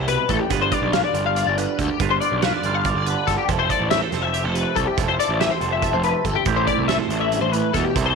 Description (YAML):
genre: math rock and midwest emo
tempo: 282 BPM (eighths)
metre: 7/8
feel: straight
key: unclear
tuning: A4 = 440 Hz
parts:
  - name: twangy electric guitar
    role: accompaniment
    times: 0.0-8.2 s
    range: G2 to D5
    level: -25 LUFS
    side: right 13 dB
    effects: phaser
  - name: twelve-string electric guitar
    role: arpeggios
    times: 0.0-8.2 s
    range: G4 to F5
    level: -22 LUFS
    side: left 12 dB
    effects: ensemble chorus
  - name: fuzz picked electric bass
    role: bass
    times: 0.0-8.1 s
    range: F1 to E2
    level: -25 LUFS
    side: equal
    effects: overdrive
  - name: loose indie drum kit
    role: drums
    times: 0.1-8.1 s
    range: hi-hat, kick drum, snare drum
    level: -26 LUFS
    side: right 5 dB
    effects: none
room: light reverb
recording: 1960s-style stereo with parts hard left and right, faint mains hum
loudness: -18 LUFS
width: side -5 dB against mid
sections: 0.0-8.2 A section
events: none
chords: 0.0 Cmaj7; 0.5 G7; 3.5 Fmaj7; 6.5 Am7